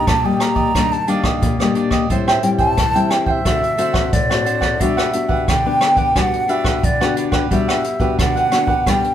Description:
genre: samba and choro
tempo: 89 BPM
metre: 4/4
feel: straight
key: G major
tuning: A4 = 441 Hz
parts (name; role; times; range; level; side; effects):
- breathy wooden flute; melody; 0.0-9.1 s; D5 to Bb5; -19 LUFS; right 1 dB; none
- cavaquinho; accompaniment; 0.0-9.1 s; D4 to G5; -23 LUFS; right 3 dB; none
- nylon-string guitar; accompaniment; 0.0-9.1 s; A2 to F#4; -20 LUFS; left 5 dB; none
- jazz brush drum kit; drums; 0.1-9.1 s; hi-hat, kick drum, rim click; -20 LUFS; right 1 dB; none
room: wet large studio reverb, RT60 0.9 s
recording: band playing live in one room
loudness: -14 LUFS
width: side -10 dB against mid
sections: 0.0-9.1 A section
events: none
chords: 0.0 Ebmaj7; 2.1 Am7; 3.5 D7; 4.8 Gmaj7

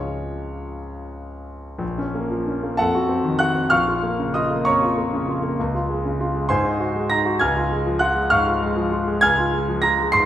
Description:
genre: classical, romantic character piece for solo piano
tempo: 65 BPM (dotted quarters)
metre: 6/8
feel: rubato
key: Bb minor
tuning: A4 = 440 Hz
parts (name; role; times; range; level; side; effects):
- clear concert grand piano; solo; 0.0-10.3 s; Bb1 to C7; -19 LUFS; equal; none
room: wet recital hall reverb, RT60 1.6 s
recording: recorded in a church or concert hall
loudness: -18 LUFS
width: side -11 dB against mid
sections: 0.0-1.8 A section; 1.8-10.3 B section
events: none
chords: 0.0 Db; 1.8 Bbm; 2.8 F7b9; 3.7 Bbm; 5.6 Db; 6.5 Ab7; 7.4 Db

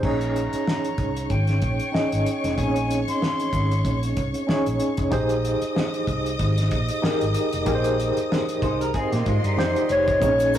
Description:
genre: lush 1970s-style soul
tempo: 94 BPM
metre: 4/4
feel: swing 58% on 16ths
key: Bb dorian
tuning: A4 = 439 Hz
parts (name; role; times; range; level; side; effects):
- breathy jazz flute; melody; 0.0-4.0, 9.9-10.6 s; Bb4 to C6; -26 LUFS; left 1 dB; none
- warm studio string section; second line; 0.0-10.6 s; Db4 to Eb6; -32 LUFS; equal; none
- tine electric piano; accompaniment; 0.0-10.6 s; C4 to Eb5; -24 LUFS; equal; medium tremolo
- vintage muted fingered electric bass; bass; 0.0-10.6 s; F1 to Bb2; -25 LUFS; equal; none
- cloth-damped thuddy drum kit; drums; 0.0-10.6 s; crash cymbal, hi-hat, kick drum, snare drum; -28 LUFS; equal; none
- electric guitar through a small old amp; riff; 8.6-10.2 s; G3 to C5; -29 LUFS; right 1 dB; none
- mellow French horn section; sustained chords; 10.2-10.6 s; none; barely audible; none; none
- tube shaker; percussion; 10.2-10.6 s; none; -45 LUFS; right 4 dB; none
room: wet booth ambience, RT60 0.2 s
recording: rough rehearsal-room recording, warm saturation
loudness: -20 LUFS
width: side -10 dB against mid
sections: 0.0-10.2 A section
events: none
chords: 0.0 Bbm11; 5.1 Fm7

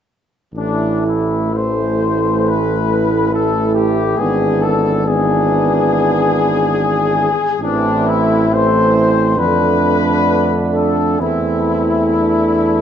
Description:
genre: classical, hymn-like piece for brass band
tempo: 58-73 BPM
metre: 4/4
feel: rubato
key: A minor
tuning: A4 = 438 Hz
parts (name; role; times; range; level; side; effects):
- bright trombone; accompaniment; 0.5-12.8 s; D3 to E3; -22 LUFS; right 4 dB; none
- clear tuba; bass; 0.5-12.8 s; G#1 to F2; -19 LUFS; equal; none
- bright trumpet section; melody; 0.6-12.8 s; D4 to C5; -17 LUFS; left 5 dB; none
- mellow flugelhorn; second line; 0.6-12.8 s; C4 to E4; -22 LUFS; right 7 dB; none
- clear euphonium; accompaniment; 0.6-12.8 s; A3 to B3; -21 LUFS; equal; none
room: moderate concert hall reverb, RT60 2.3 s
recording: dark, warm production, nothing above 7.9 kHz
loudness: -13 LUFS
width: side -9 dB against mid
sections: 0.5-12.8 A section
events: none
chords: 0.5 Am; 4.2 E7/G#; 7.6 Am; 9.4 Dm/F; 11.2 Am/E

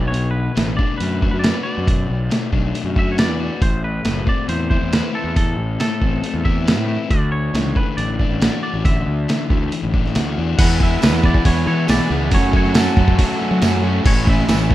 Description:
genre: indie rock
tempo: 138 BPM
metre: 4/4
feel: straight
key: E mixolydian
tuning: A4 = 439 Hz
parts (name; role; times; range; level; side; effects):
- twangy electric guitar; melody; 0.0-14.7 s; A4 to F#5; -27 LUFS; equal; tape echo
- crunchy overdriven guitar; riff; 0.0-14.7 s; A2 to B4; -23 LUFS; left 6 dB; none
- fuzz fingered electric bass; bass; 0.0-14.7 s; F#1 to F#3; -21 LUFS; equal; overdrive
- lo-fi sampler-style drum kit; drums; 0.1-14.7 s; crash cymbal, hi-hat, kick drum, snare drum; -18 LUFS; equal; none
- tonewheel organ; sustained chords; 10.6-14.7 s; G#4 to C#6; -34 LUFS; equal; none
- fuzz guitar; riff; 10.6-14.7 s; A2 to F#4; -22 LUFS; right 6 dB; distortion, lush chorus
- tambourine; percussion; 11.0-14.6 s; none; -35 LUFS; right 9 dB; none
room: digital ambience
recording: rough home demo mix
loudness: -15 LUFS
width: side -14 dB against mid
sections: 0.0-10.6 A section; 10.6-14.7 B section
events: none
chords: 0.0 Bm7; 3.6 Amadd9; 7.1 Dadd9; 10.6 Eadd9; 12.3 F#m; 14.1 A6

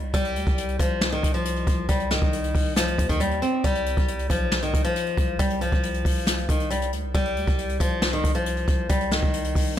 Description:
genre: hip hop, trap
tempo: 137 BPM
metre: 4/4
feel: half-time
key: C harmonic minor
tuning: A4 = 436 Hz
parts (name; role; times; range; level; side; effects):
- hard-hitting 808-style bass; bass; 0.0-9.8 s; B1 to Eb2; -28 LUFS; equal; none
- flamenco guitar; melody; 0.1-9.7 s; Eb3 to C4; -26 LUFS; left 1 dB; tape echo
- jazz brush drum kit; drums; 0.1-9.7 s; hi-hat, kick drum, snare drum; -25 LUFS; equal; none
room: little or no reverb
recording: none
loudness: -21 LUFS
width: side -11 dB against mid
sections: 0.0-9.8 A section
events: none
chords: 0.1 Cm; 3.6 C5; 7.1 Cm

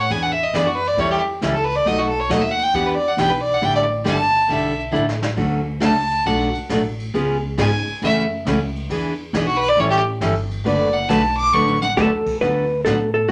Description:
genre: country, western swing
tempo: 136 BPM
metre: 4/4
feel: swing 66% on 8ths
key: D major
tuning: A4 = 440 Hz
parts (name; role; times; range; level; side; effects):
- clear fiddle; second line; 0.0-11.9 s; F#4 to D6; -21 LUFS; equal; none
- upright bass; bass; 0.0-13.3 s; F#1 to A2; -29 LUFS; equal; none
- picked steel-string acoustic guitar; accompaniment; 0.1-13.3 s; B2 to B4; -24 LUFS; equal; none
- vintage brush drum kit; drums; 0.1-13.3 s; brushed snare drum, crash cymbal, hi-hat, kick drum, ride cymbal, snare drum, toms; -34 LUFS; equal; none
- hollow-body jazz guitar; melody; 12.0-13.3 s; F#4 to B4; -21 LUFS; equal; none
room: wet club reverb, RT60 0.5 s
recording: none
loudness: -19 LUFS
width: mono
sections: 0.0-12.4 A section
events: fiddle solo 0.0-12.4; drum fill 4.9-5.4, 11.5-12.0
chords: 0.1 E7; 1.0 A7; 1.9 B7; 2.7 Em7; 3.6 A7sus4; 5.4 Dmaj7; 6.3 Bm7; 7.1 C#7; 8.0 F#m7; 8.9 E7; 9.8 A7; 10.7 D69; 12.4 D6

